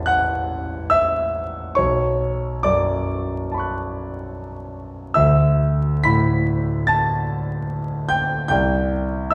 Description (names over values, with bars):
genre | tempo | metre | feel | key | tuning
classical, impressionist solo piano | 65-76 BPM | 4/4 | rubato | unclear | A4 = 440 Hz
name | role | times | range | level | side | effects
clear concert grand piano | solo | 0.0-9.3 s | A1 to B6 | -21 LUFS | equal | none
room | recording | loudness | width
wet recital hall reverb, RT60 1.7 s | heard from further back in the room, vinyl crackle | -21 LUFS | mono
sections
0.0-9.3 A section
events
none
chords
0.0 A5; 1.8 Bm9; 5.2 Dsus2; 8.5 C5